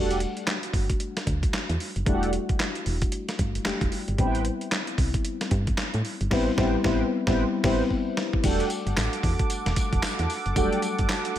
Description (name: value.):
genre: R&B, new jack swing.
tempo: 113 BPM.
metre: 4/4.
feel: swing 61% on 16ths.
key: E minor.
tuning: A4 = 439 Hz.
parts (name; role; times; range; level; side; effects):
mellow FM electric piano; accompaniment; 0.0-11.4 s; F#3 to G4; -29 LUFS; left 3 dB; chorus.
mellow synth brass; stabs; 0.0-10.8 s; G4 to G5; -31 LUFS; right 3 dB; chorus, ping-pong delay.
solid FM bass; bass; 0.0-11.4 s; E1 to A2; -28 LUFS; equal; none.
dusty soul sampler-style drum kit; drums; 0.1-11.4 s; crash cymbal, handclaps, hi-hat, kick drum, snare drum, tambourine; -27 LUFS; equal; gated reverb.
warm analog pad; sustained chords; 8.7-11.4 s; A4 to D6; -31 LUFS; right 3 dB; chorus.
room: digital ambience.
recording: none.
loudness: -23 LUFS.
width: side -11 dB against mid.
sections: 0.0-8.4 A section; 8.4-11.4 B section.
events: band accent 6.3-8.4; drum fill 7.9-8.4.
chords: 0.0 Em11; 4.2 Am9; 8.4 Em11.